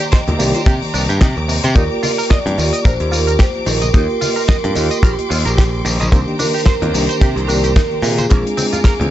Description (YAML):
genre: nu-disco, nu disco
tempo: 110 BPM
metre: 4/4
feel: swing 56% on 16ths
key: Eb major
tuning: A4 = 437 Hz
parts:
  - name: reed electric piano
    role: accompaniment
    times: 0.0-9.1 s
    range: Eb3 to D5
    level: -22 LUFS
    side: equal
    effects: fast tremolo, sidechain pumping
  - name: bright studio string section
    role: sustained chords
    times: 0.0-9.1 s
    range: Bb4 to D6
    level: -26 LUFS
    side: left 1 dB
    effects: vintage 12-bit sampler grit, sidechain pumping
  - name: direct-recorded clean electric guitar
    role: riff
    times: 0.0-8.9 s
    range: C3 to Eb5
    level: -26 LUFS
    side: right 4 dB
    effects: analog chorus
  - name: damped 70s drum kit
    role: drums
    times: 0.0-9.1 s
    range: hi-hat, snare drum, tambourine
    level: -22 LUFS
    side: left 2 dB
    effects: studio reverb
  - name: cabasa, congas and bongos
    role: percussion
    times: 0.0-9.1 s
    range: none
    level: -26 LUFS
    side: left 1 dB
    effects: none
  - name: vibraphone with medium mallets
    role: melody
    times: 0.1-9.1 s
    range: G4 to Eb5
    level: -22 LUFS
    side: right 2 dB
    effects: dub echo
  - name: kick drum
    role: drums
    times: 0.1-9.0 s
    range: none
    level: -12 LUFS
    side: equal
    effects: studio reverb
  - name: modern bright picked electric bass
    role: bass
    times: 0.3-9.1 s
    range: Bb1 to C3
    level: -18 LUFS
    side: equal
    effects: sidechain pumping
room: small room ambience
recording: nothing above 8.0 kHz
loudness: -13 LUFS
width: side -13 dB against mid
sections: 0.0-9.1 A section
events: none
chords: 0.0 Cm7; 1.8 Ebmaj7; 6.1 Cm7; 8.3 Bb7